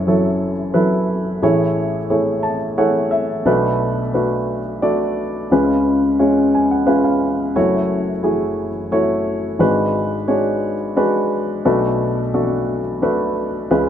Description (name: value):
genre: folk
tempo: 88 BPM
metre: 3/4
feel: straight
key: F# minor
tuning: A4 = 439 Hz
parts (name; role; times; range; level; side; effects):
- warm upright piano; solo; 0.0-13.9 s; F#1 to A5; -16 LUFS; equal; none
room: moderate plate reverb, RT60 2.9 s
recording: heard from further back in the room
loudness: -16 LUFS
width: side -9 dB against mid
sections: 0.0-7.6 A section; 7.6-13.9 A section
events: none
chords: 0.0 F#m7; 1.4 Amaj7; 3.5 Bm7; 5.5 C#7; 7.6 F#m7; 9.6 G#m7b5; 11.7 Bm7